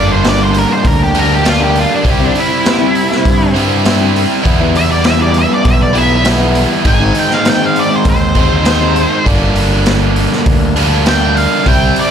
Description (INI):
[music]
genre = quiet-loud alternative rock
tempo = 100 BPM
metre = 4/4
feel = straight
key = G dorian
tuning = A4 = 438 Hz
[part]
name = octave-fuzz lead guitar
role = melody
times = 0.0-12.1 s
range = D4 to Ab5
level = -15 LUFS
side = right 1 dB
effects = distortion, slapback echo
[part]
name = biting overdriven guitar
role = riff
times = 0.0-12.1 s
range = G2 to E4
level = -14 LUFS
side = right 1 dB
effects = none
[part]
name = growling fingered electric bass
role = bass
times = 0.0-11.9 s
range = G1 to G2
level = -15 LUFS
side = equal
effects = overdrive
[part]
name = electric guitar through a small old amp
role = arpeggios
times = 0.1-9.0 s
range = C3 to E4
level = -19 LUFS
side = left 4 dB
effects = lush chorus, slapback echo
[part]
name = raw garage drum kit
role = drums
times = 0.2-12.1 s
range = hi-hat, kick drum, snare drum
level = -16 LUFS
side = equal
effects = none
[sound]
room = little or no reverb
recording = none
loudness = -9 LUFS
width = side -8 dB against mid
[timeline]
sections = 0.0-12.1 A section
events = lead electric guitar solo 0.0-12.1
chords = 0.0 Gm; 2.1 C; 4.5 Em; 6.9 Ab; 9.3 Gm